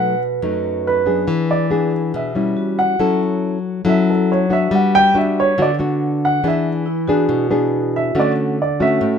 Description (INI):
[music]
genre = bossa nova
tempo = 140 BPM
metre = 4/4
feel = straight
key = unclear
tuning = A4 = 438 Hz
[part]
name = warm grand piano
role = melody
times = 0.0-9.2 s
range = A4 to G5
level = -18 LUFS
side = right 1 dB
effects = none
[part]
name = nylon-string guitar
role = accompaniment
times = 0.0-9.2 s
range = F#2 to A4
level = -17 LUFS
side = left 2 dB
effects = none
[part]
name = vibraphone with medium mallets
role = accompaniment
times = 0.0-3.0, 6.9-8.2 s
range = E4 to B4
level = -23 LUFS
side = right 8 dB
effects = none
[sound]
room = light reverb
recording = minimal, uncompressed stereo recording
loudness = -15 LUFS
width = side -7 dB against mid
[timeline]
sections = 0.0-9.2 A section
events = grand piano solo 0.0-9.2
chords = 0.0 B7; 1.3 E7; 2.6 Em69/G; 3.0 Dmaj9/F#; 4.7 Gmaj7; 6.4 E7; 8.2 Dmaj7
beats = 0.42 0.85 | 1.28 1.71 2.14 2.57 | 3.00 3.43 3.85 4.29 | 4.71 5.14 5.57 6.00 | 6.43 6.86 7.29 7.72 | 8.15 8.58 9.01